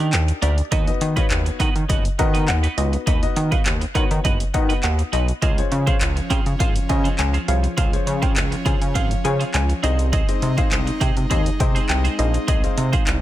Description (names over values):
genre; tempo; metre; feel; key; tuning
dance-pop; 102 BPM; 4/4; straight; unclear; A4 = 440 Hz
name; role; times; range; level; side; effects
clear grand piano; accompaniment; 0.0-13.2 s; B3 to F5; -29 LUFS; left 6 dB; sidechain pumping
twelve-string electric guitar; riff; 0.0-13.0 s; Bb3 to C5; -29 LUFS; right 6 dB; analog chorus
chorused synth bass; bass; 0.0-13.2 s; F#1 to Eb3; -21 LUFS; equal; sidechain pumping
mallet-like synth pluck; melody; 0.1-13.2 s; D5 to Ab5; -30 LUFS; equal; chorus, sidechain pumping
punchy analog drum machine; drums; 0.1-13.2 s; handclaps, hi-hat, kick drum; -21 LUFS; equal; none
airy breathy pad; sustained chords; 5.7-13.2 s; F3 to Eb4; -30 LUFS; equal; chorus, sidechain pumping
room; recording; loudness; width
digital ambience; none; -18 LUFS; side -14 dB against mid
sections
0.0-13.2 A section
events
none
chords
0.0 Ebmaj7; 0.7 B; 5.4 Dbmaj7; 9.8 Ab